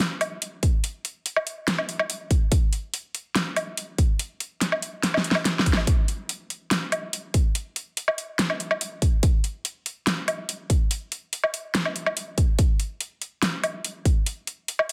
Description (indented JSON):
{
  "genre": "dubstep",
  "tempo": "143 BPM",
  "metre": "4/4",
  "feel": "half-time",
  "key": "none",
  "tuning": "none",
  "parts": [
    { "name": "dubstep drum kit", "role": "drums", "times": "0.0-14.9 s", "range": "hi-hat, snare drum, woodblock", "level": "-27 LUFS", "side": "equal", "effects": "small room ambience" },
    { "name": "electronic kick drum", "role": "drums", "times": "0.6-14.1 s", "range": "none", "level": "-23 LUFS", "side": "equal", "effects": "small room ambience" }
  ],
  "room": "light reverb, digital ambience",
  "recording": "dense, heavily limited modern master",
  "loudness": "-26 LUFS",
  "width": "mono",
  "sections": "0.0-14.9 A section",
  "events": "drum fill 5.0-5.9",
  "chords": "none",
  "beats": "0.00 0.42 | 0.84 1.26 1.68 2.10 | 2.52 2.94 3.35 3.77 | 4.20 4.61 5.03 5.45 | 5.87 6.29 6.71 7.13 | 7.55 7.97 8.39 8.81 | 9.23 9.65 10.07 10.49 | 10.91 11.33 11.75 12.17 | 12.59 13.01 13.43 13.85 | 14.26 14.68"
}